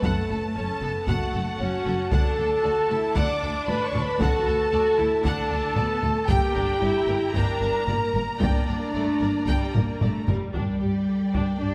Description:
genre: cinematic, epic orchestral film score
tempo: 114 BPM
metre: 4/4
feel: straight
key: unclear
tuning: A4 = 440 Hz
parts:
  - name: warm symphonic violin section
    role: melody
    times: 0.0-11.7 s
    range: D5 to D6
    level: -36 LUFS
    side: equal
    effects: none
  - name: clear symphonic violin section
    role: second line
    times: 0.0-11.7 s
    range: A4 to Bb5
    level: -37 LUFS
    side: equal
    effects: none
  - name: rich symphonic viola section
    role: accompaniment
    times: 0.0-11.7 s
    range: G3 to G4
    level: -36 LUFS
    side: equal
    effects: none
  - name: mellow French horn section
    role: sustained chords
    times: 0.0-11.7 s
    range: D4 to D5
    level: -29 LUFS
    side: equal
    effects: none
  - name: dark trumpet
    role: stabs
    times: 0.0-10.3 s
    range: D4 to D5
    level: -34 LUFS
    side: equal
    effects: none
  - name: dark symphonic cello section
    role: bass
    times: 0.0-11.7 s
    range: D2 to D4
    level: -32 LUFS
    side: equal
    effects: none
  - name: rich symphonic double bass section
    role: bass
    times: 0.0-11.7 s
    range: F#1 to G2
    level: -34 LUFS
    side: equal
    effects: none
  - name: taiko ensemble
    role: drums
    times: 0.0-11.7 s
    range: none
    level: -30 LUFS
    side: equal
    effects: none
room: moderate concert hall reverb, RT60 2.4 s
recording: none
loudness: -24 LUFS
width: mono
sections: 0.0-10.5 A section; 10.5-11.7 B section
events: drum fill 9.7-10.5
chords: 0.0 F#m; 2.1 D; 6.3 Gm

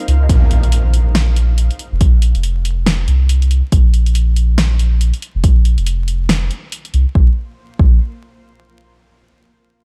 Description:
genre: deep dubstep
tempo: 140 BPM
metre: 4/4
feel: swing 59% on 16ths, half-time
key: Bb minor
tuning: A4 = 438 Hz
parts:
  - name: granular cloud pad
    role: sustained chords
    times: 0.0-0.3, 7.3-7.4 s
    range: Eb4 to F5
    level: -36 LUFS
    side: equal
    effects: built-in reverb
  - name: soft dub sub bass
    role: bass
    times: 0.1-8.0 s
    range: F1 to Db2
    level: -15 LUFS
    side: equal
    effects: none
  - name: deep house drum kit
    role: drums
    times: 0.1-7.0 s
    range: hi-hat, snare drum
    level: -22 LUFS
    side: equal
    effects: none
  - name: electronic kick drum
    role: drums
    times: 0.3-7.9 s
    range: none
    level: -14 LUFS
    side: equal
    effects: none
  - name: impact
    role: sound effects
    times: 0.3-2.0 s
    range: none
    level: -26 LUFS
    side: equal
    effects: none
room: little or no reverb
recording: dark, warm production, vinyl crackle, faint mains hum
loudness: -14 LUFS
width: mono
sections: 0.3-7.2 A section; 7.2-8.9 B section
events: impact 0.3-2.0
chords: 0.3 Bb5

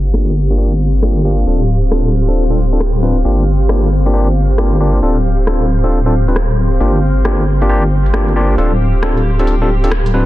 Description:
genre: UK garage, two-step garage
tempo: 135 BPM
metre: 4/4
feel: swing 65% on 16ths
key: G minor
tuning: A4 = 441 Hz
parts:
  - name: soft string machine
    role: sustained chords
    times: 0.0-10.3 s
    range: C4 to C5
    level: -25 LUFS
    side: left 1 dB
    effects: ensemble chorus
  - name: deep soft wobble bass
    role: bass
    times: 0.0-10.3 s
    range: D1 to G1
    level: -13 LUFS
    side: equal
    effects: chorus
  - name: granular cloud pad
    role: texture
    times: 0.0-10.3 s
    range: G4 to F5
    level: -23 LUFS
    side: right 1 dB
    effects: built-in reverb
  - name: overdriven tine electric piano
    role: stabs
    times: 0.1-10.3 s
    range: Bb3 to B4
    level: -18 LUFS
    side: left 1 dB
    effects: digital delay
  - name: garage drum kit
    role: drums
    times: 0.1-10.1 s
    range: hi-hat, rim click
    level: -22 LUFS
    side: equal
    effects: soft clipping on snare
room: light reverb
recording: dense, heavily limited modern master, low-pass filter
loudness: -11 LUFS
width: side -16 dB against mid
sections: 0.0-10.3 A section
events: filter sweep 0.0-10.3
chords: 0.0 Gm7; 1.5 Dm7; 3.2 Gm7; 5.0 Dm7; 6.8 Gm7; 8.6 Dm7

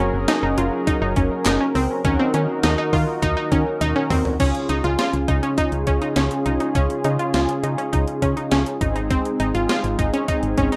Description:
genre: synth-pop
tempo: 102 BPM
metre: 4/4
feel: straight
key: unclear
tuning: A4 = 438 Hz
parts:
  - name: mellow synth brass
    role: accompaniment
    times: 0.0-10.8 s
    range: C4 to Bb4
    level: -29 LUFS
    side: equal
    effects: chorus
  - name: warm analog pad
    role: sustained chords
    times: 0.0-10.8 s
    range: Db3 to Bb4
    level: -29 LUFS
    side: equal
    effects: chorus
  - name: analog pluck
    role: arpeggios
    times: 0.0-10.8 s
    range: C4 to F4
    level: -25 LUFS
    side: equal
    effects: chorus, analog delay
  - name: solid FM bass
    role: bass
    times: 0.0-10.7 s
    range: Gb1 to Eb3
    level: -26 LUFS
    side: equal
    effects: none
  - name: gated 80s digital drum machine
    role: drums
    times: 0.3-10.8 s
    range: crash cymbal, handclaps, hi-hat, kick drum, snare drum, toms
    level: -27 LUFS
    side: equal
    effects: gated reverb, gated reverb snare
room: wet small room reverb, RT60 0.6 s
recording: rough home demo mix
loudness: -21 LUFS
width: mono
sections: 0.0-4.4 A section; 4.4-10.8 B section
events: drum fill 3.8-4.4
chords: 0.0 Gbadd9; 2.0 Ebm; 4.4 Db; 8.8 Ab

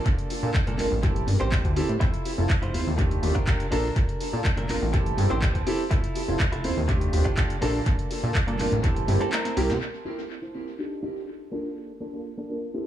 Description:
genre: filtered disco house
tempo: 123 BPM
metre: 4/4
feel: straight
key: unclear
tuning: A4 = 439 Hz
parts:
  - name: direct-recorded clean electric guitar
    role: riff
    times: 0.0-12.8 s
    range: Bb3 to C5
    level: -34 LUFS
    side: right 1 dB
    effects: vintage 12-bit sampler grit, sidechain pumping, low-pass filter
  - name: fat analog bass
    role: bass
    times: 0.1-9.8 s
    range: F1 to C3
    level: -26 LUFS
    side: equal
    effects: tube saturation, sidechain pumping, low-pass filter
  - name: electronic kick drum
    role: drums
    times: 0.1-8.9 s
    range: none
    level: -25 LUFS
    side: equal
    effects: none
  - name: punchy analog drum machine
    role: drums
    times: 0.1-9.8 s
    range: handclaps, hi-hat, snare drum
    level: -33 LUFS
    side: equal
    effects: sidechain pumping on hats, tape echo
  - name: tambourine and congas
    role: percussion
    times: 0.1-9.8 s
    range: none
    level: -36 LUFS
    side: equal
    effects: sidechain pumping on perc, low-pass filter on perc, tape echo
  - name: warm grand piano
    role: accompaniment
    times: 0.4-12.9 s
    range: A3 to C5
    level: -30 LUFS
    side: right 1 dB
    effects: phaser, sidechain pumping, low-pass filter, tape echo
room: digital ambience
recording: echo-heavy mix, small room ambience, faint mains hum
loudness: -23 LUFS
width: side -11 dB against mid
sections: 0.0-9.8 A section; 9.8-12.9 B section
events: kick drops out 9.3-9.8; drum fill 9.3-9.8; filter sweep 9.8-12.9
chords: 0.0 Bbmaj7; 1.0 Am7; 2.0 Fmaj7; 3.0 Ebmaj9#11; 3.7 Bbmaj7; 4.9 Am7; 5.9 Fmaj7; 6.9 Ebmaj9#11; 7.6 Bbmaj7; 8.8 Am7; 9.3 C7; 9.8 Fmaj7; 10.8 Ebmaj9#11; 11.5 Bbmaj7

